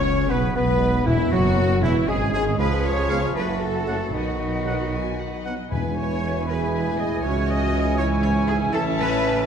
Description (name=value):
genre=classical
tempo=78 BPM (dotted quarters)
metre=6/8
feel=rubato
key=unclear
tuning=A4 = 439 Hz
part: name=warm symphonic violin section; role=melody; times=0.0-9.5 s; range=E4 to A5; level=-35 LUFS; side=left 7 dB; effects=none
part: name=clear clarinet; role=second line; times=0.0-9.5 s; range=C#4 to C#5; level=-32 LUFS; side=left 2 dB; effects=none
part: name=mellow hollow silver concert flute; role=second line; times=0.0-9.5 s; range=E5 to D#6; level=-35 LUFS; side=left 2 dB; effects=none
part: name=rich symphonic violin section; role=second line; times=0.0-9.5 s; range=D#4 to D#5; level=-36 LUFS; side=left 4 dB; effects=none
part: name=warm oboe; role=second line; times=0.0-9.5 s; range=E4 to B5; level=-35 LUFS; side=equal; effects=none
part: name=clear bassoon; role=accompaniment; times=0.0-9.5 s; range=D#3 to C#4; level=-31 LUFS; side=right 1 dB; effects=none
part: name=dark trombone section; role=sustained chords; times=0.0-9.5 s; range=E2 to G#3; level=-31 LUFS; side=right 2 dB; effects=none
part: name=mellow French horn section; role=sustained chords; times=0.0-9.5 s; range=E3 to E4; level=-29 LUFS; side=left 5 dB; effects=none
part: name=bright trumpet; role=stabs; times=0.0-9.5 s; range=E4 to G#5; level=-32 LUFS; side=equal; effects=none
part: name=bright symphonic cello section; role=bass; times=0.0-9.5 s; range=E4 to D#5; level=-29 LUFS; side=right 1 dB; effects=none
part: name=mellow tuba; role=bass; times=0.0-9.5 s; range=E1 to C#2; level=-29 LUFS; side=right 4 dB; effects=none
part: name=warm symphonic double bass section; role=bass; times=0.0-9.5 s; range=E1 to E2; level=-27 LUFS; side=right 2 dB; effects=none
part: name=warm symphonic viola section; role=accompaniment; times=0.3-9.5 s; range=G#3 to G#4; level=-32 LUFS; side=right 2 dB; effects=none
part: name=timpani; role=percussion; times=1.1-1.8, 5.7-6.4 s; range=E2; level=-32 LUFS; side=left 3 dB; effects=none
room=wet concert hall reverb, RT60 1.7 s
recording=dark, warm production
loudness=-20 LUFS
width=side -7 dB against mid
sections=0.0-9.5 A section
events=none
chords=0.0 G#madd11/B; 1.1 C#m7/E; 2.6 C#7; 3.4 F#m7; 4.1 B; 5.7 E; 7.2 C#m; 8.7 A